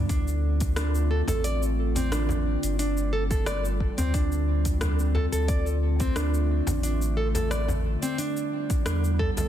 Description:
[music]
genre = organic downtempo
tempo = 89 BPM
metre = 4/4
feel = straight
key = unclear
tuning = A4 = 441 Hz
[part]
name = warbly tape-like pad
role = sustained chords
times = 0.0-9.5 s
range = D3 to F4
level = -33 LUFS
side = left 1 dB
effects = chorus, built-in reverb, sidechain pumping
[part]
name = nylon-string guitar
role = arpeggios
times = 0.0-9.5 s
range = C4 to D5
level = -30 LUFS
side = right 2 dB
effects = tape echo
[part]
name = warm sub bass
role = bass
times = 0.0-9.5 s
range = G1 to E2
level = -26 LUFS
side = equal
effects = sidechain pumping
[part]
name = deep house drum kit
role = drums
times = 0.1-9.5 s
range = hi-hat, rim click, shaker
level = -35 LUFS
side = left 1 dB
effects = overdrive
[part]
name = electronic kick drum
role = drums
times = 0.1-9.3 s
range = none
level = -27 LUFS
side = equal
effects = overdrive
[part]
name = frame drum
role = percussion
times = 1.3-9.5 s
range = none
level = -33 LUFS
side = left 1 dB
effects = none
[sound]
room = light reverb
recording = dense, heavily limited modern master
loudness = -23 LUFS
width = side -11 dB against mid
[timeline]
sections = 0.0-9.5 A section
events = none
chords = 0.1 G7sus4; 5.5 Dm7; 8.2 Em7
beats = | 0.09 0.77 1.44 2.12 | 2.79 3.46 4.14 4.81 | 5.49 6.16 6.84 7.51 | 8.18 8.86

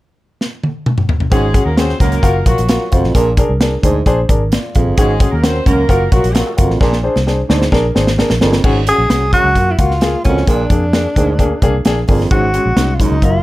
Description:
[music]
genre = uptempo 1960s-style soul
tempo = 131 BPM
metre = 4/4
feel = straight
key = Ab mixolydian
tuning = A4 = 440 Hz
[part]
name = natural country drum kit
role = drums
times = 0.4-13.3 s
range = crash cymbal, hi-hat, kick drum, snare drum, toms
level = -15 LUFS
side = equal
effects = none
[part]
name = mellow horn section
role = second line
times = 1.3-6.6 s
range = Gb3 to C5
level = -21 LUFS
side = equal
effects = none
[part]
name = warm upright piano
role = accompaniment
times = 1.3-13.4 s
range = Gb3 to F5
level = -18 LUFS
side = left 2 dB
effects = none
[part]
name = warm baritone saxophone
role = riff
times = 1.3-13.2 s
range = F2 to Bb2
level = -20 LUFS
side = right 4 dB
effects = none
[part]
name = vintage muted fingered electric bass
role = bass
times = 1.3-13.4 s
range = Gb1 to Gb2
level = -17 LUFS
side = equal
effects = tube saturation
[part]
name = mellow tenor saxophone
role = melody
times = 8.9-13.4 s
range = Db4 to Ab4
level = -16 LUFS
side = equal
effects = none
[sound]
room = light reverb, small room ambience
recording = none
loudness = -11 LUFS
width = side -17 dB against mid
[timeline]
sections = 0.0-1.3 A section; 1.3-8.6 B section; 8.6-13.4 C section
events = drum fill 0.4-1.3, 6.8-8.6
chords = 0.0 N.C.; 1.3 Ab7sus4; 2.2 Gbmaj7; 3.1 Bb7; 5.0 Ab7sus4; 5.9 Gbmaj7; 6.8 Bb7; 8.6 Ab7sus4; 9.6 Gbmaj7; 10.5 Bb7; 12.3 Ab7sus4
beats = 0.41 0.86 | 1.32 1.78 2.23 2.69 | 3.15 3.61 4.06 4.52 | 4.98 5.43 5.89 6.35 | 6.81 7.27 7.72 8.18 | 8.64 9.10 9.56 10.02 | 10.47 10.93 11.39 11.85 | 12.31 12.77 13.23

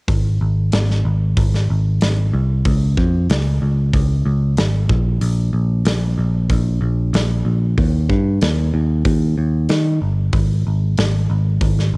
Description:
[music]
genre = hard rock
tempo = 94 BPM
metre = 4/4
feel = straight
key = unclear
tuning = A4 = 440 Hz
[part]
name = picked electric bass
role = bass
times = 0.1-12.0 s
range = G1 to Eb3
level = -16 LUFS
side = equal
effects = none
[part]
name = big rock drum kit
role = drums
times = 0.1-11.9 s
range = hi-hat, kick drum, snare drum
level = -20 LUFS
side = equal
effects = cassette tape
[sound]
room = little or no reverb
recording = home recording on cassette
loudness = -15 LUFS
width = side -30 dB against mid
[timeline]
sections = 0.1-12.0 A section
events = none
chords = none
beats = | 0.09 0.73 1.37 2.01 | 2.66 3.30 3.94 4.58 | 5.22 5.86 6.50 7.14 | 7.78 8.42 9.06 9.70 | 10.34 10.97 11.61

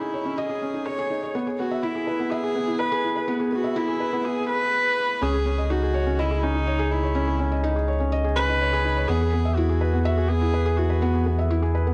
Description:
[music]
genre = piano and strings electronica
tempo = 124 BPM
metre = 4/4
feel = straight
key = C# minor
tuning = A4 = 439 Hz
[part]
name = warm viola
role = melody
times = 0.0-11.5 s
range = D#4 to C#5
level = -28 LUFS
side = equal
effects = delay
[part]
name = felt-muted upright piano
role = riff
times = 0.0-11.9 s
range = B3 to E5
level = -28 LUFS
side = equal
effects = delay
[part]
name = round analog bass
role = bass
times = 5.2-11.9 s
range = C#2 to E2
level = -26 LUFS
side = equal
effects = none
[sound]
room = moderate lush hall reverb, RT60 1.8 s, studio reverb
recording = none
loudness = -24 LUFS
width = mono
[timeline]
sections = 0.0-5.2 A section; 5.2-11.9 B section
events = build-up 0.0-5.2; drop 5.2-11.9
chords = 0.0 C#madd9; 1.3 E; 5.2 C#madd9; 9.1 Eadd9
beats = 0.38 0.86 | 1.35 1.83 2.31 2.80 | 3.28 3.77 4.25 4.73 | 5.22 5.70 6.18 6.67 | 7.15 7.64 8.12 8.60 | 9.09 9.57 10.06 10.54 | 11.02 11.51

